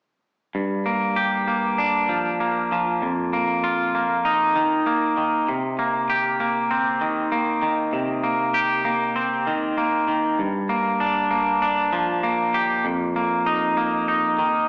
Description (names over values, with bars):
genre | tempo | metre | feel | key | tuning
rock | 98 BPM | 4/4 | straight | G minor | A4 = 440 Hz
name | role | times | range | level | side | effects
twangy electric guitar | solo | 0.5-14.7 s | F2 to G4 | -22 LUFS | equal | none
room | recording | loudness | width
wet stone room reverb, RT60 1.3 s | band playing live in one room, small speaker sound | -22 LUFS | mono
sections
0.5-10.4 A section; 10.4-14.7 B section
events
none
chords
0.5 Gm7; 3.0 F7sus4; 5.5 Cm7; 10.4 Gm7; 12.9 F7sus4